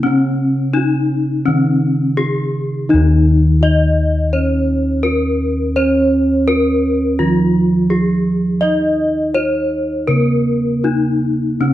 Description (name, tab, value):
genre	Javanese gamelan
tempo	84 BPM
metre	4/4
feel	straight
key	Eb slendro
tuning	A4 = 440 Hz
part	gamelan-type bronze metallophone	melody	0.0-11.7 s	Db4-45c to Eb5	-18 LUFS	left 3 dB	none
part	gamelan-type bronze metallophone	accompaniment	0.0-11.7 s	Db3-45c to Eb4	-17 LUFS	right 2 dB	none
part	gamelan-type bossed gongs	bass	0.0-11.7 s	Eb2 to Eb5	-18 LUFS	left 1 dB	none
room	wet recital hall reverb, RT60 1.4 s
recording	dark, warm production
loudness	-13 LUFS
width	side -13 dB against mid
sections	0.0-11.7 A section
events	none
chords	none